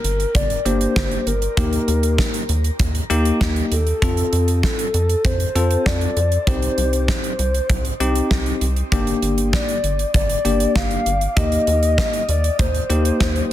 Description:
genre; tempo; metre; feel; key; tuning
synth-pop; 98 BPM; 4/4; straight; G minor; A4 = 440 Hz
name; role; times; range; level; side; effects
hollow clarinet-like synth lead; melody; 0.0-13.5 s; A4 to F5; -23 LUFS; left 1 dB; chorus, ping-pong delay, shimmer reverb
rubbery square bass; bass; 0.0-13.4 s; G1 to F2; -20 LUFS; equal; none
gated 80s drum kit; drums; 0.0-13.5 s; hi-hat, kick drum, snare drum; -21 LUFS; right 1 dB; none
bell-like tine electric piano; accompaniment; 0.7-13.5 s; Bb3 to A4; -24 LUFS; left 2 dB; fast stereo tremolo, shimmer reverb
room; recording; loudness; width
light reverb, small room ambience; dense, heavily limited modern master; -16 LUFS; side -12 dB against mid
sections
0.0-13.5 A section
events
none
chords
0.0 Gm; 1.6 Eb; 4.0 F; 6.5 Cm; 8.9 Gm; 11.4 Eb6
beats
0.35 0.96 | 1.57 2.19 2.80 3.41 | 4.02 4.63 5.25 5.86 | 6.47 7.08 7.70 8.31 | 8.92 9.53 10.14 10.76 | 11.37 11.98 12.59 13.21

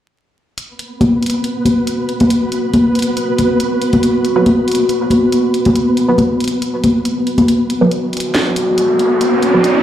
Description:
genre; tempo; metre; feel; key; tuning
deep dubstep; 139 BPM; 4/4; half-time; unclear; A4 = 439 Hz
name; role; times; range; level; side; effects
dark analog pad; sustained chords; 1.8-9.8 s; B3 to F#4; -16 LUFS; equal; chorus, phaser
garage drum kit; drums; 0.6-9.7 s; hi-hat, snare drum; -23 LUFS; equal; none
flickering grainy texture; texture; 1.0-7.5 s; B3 to B4; -22 LUFS; right 1 dB; built-in reverb
congas; percussion; 1.0-7.5 s; none; -14 LUFS; left 1 dB; dub echo
filtered dub chord stab; stabs; 4.4-9.7 s; F#3 to B4; -18 LUFS; right 2 dB; wide subtle chorus, dub echo
riser; sound effects; 7.9-9.8 s; none; -18 LUFS; right 1 dB; none
room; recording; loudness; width
light reverb, digital ambience; played on a big sound system in a bare room, large studio reverb, vinyl crackle; -12 LUFS; side -11 dB against mid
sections
0.6-7.5 A section; 7.5-9.8 B section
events
build-up 7.5-9.8; riser 7.9-9.8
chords
0.6 B5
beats
| 0.58 1.01 1.44 1.87 | 2.30 2.74 3.17 3.60 | 4.03 4.46 4.89 5.33 | 5.76 6.19 6.62 7.05 | 7.48 7.92 8.35 8.78 | 9.21 9.64

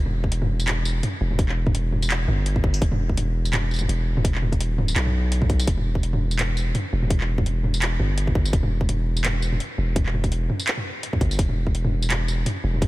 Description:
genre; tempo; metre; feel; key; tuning
half-time drum and bass; 168 BPM; 4/4; swing 56% on 16ths, half-time; E minor; A4 = 440 Hz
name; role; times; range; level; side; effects
long sustained 808-style bass; bass; 0.0-12.9 s; E1 to B1; -23 LUFS; equal; tube saturation
drum and bass drum kit; drums; 0.1-12.9 s; handclaps, hi-hat, tambourine, toms; -26 LUFS; equal; none
electronic kick drum; drums; 0.2-12.9 s; none; -22 LUFS; equal; none
room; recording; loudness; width
little or no reverb; none; -20 LUFS; side -18 dB against mid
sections
0.0-12.9 A section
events
none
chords
none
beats
0.32 0.68 1.03 | 1.39 1.75 2.10 2.46 | 2.82 3.18 3.53 3.89 | 4.25 4.61 4.96 5.32 | 5.68 6.03 6.39 6.75 | 7.11 7.46 7.82 8.18 | 8.53 8.89 9.25 9.61 | 9.96 10.32 10.68 11.03 | 11.39 11.75 12.11 12.46 | 12.82

